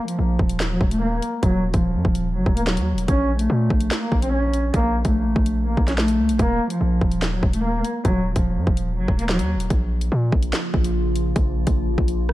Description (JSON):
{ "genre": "hip hop, drill", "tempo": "145 BPM", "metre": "4/4", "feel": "half-time", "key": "unclear", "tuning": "A4 = 442 Hz", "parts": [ { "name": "warm cello", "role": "melody", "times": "0.0-9.5 s", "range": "F3 to Db4", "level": "-22 LUFS", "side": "equal", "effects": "low-pass filter, ping-pong delay" }, { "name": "drill drum kit", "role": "drums", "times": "0.1-12.3 s", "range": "handclaps, hi-hat, kick drum, rim click, snare drum", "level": "-22 LUFS", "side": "equal", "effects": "vintage 12-bit sampler grit" }, { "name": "hard-hitting 808-style bass", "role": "bass", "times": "0.2-12.3 s", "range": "Eb1 to Bb2", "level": "-23 LUFS", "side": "equal", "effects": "none" }, { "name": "warbly tape-like pad", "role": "sustained chords", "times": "9.7-12.3 s", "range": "Db3 to F4", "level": "-27 LUFS", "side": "equal", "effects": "chorus, built-in reverb" } ], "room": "little or no reverb", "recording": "none", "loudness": "-18 LUFS", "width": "side -16 dB against mid", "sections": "0.0-12.3 A section", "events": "filter sweep on cello 0.0-9.7", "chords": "0.0 Ebm; 3.1 N.C.; 6.4 Ebm; 9.7 Bbm" }